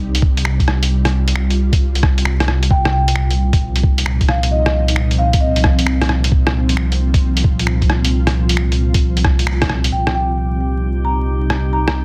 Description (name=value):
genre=future garage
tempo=133 BPM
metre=4/4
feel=swing 66% on 16ths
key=C minor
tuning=A4 = 439 Hz
part: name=ethereal airy pad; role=sustained chords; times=0.0-12.0 s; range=Bb2 to F4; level=-25 LUFS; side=equal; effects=ensemble chorus, built-in reverb, sidechain pumping
part: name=warm sub bass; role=bass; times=0.0-12.0 s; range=C2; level=-19 LUFS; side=equal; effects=sidechain pumping
part: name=lo-fi sampler-style drum kit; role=drums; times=0.1-11.9 s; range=finger snaps, hi-hat, rim click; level=-22 LUFS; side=equal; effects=soft clipping on snare, studio reverb
part: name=electronic kick drum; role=drums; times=0.2-9.7 s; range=none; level=-18 LUFS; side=equal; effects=studio reverb
part: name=marimba with medium mallets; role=melody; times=2.7-5.9, 9.9-11.9 s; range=Eb5 to Bb5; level=-25 LUFS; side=equal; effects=vintage 12-bit sampler grit, delay
part: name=drifting glass-harmonics texture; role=texture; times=9.9-12.0 s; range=G4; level=-32 LUFS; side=equal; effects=chorus, built-in reverb
room=light reverb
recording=dense, heavily limited modern master, vinyl crackle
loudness=-16 LUFS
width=mono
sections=0.0-9.9 A section; 9.9-12.0 B section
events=band accent 9.5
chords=0.0 Cm; 2.7 Bbsus4/C; 9.9 Cm